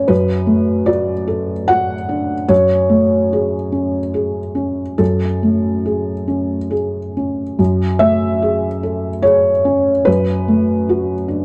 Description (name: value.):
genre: neoclassical minimalist piano.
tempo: 69-76 BPM.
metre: 3/4.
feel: rubato.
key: F# minor.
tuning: A4 = 441 Hz.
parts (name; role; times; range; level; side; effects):
felt-muted upright piano; solo; 0.0-11.4 s; F#2 to F#5; -16 LUFS; equal; none.
room: light reverb.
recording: dark, warm production.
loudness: -17 LUFS.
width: mono.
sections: 0.0-7.6 A section; 7.6-11.4 B section.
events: none.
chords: 0.1 Bm7/F#; 2.5 F#madd9; 10.1 Bm7/F#.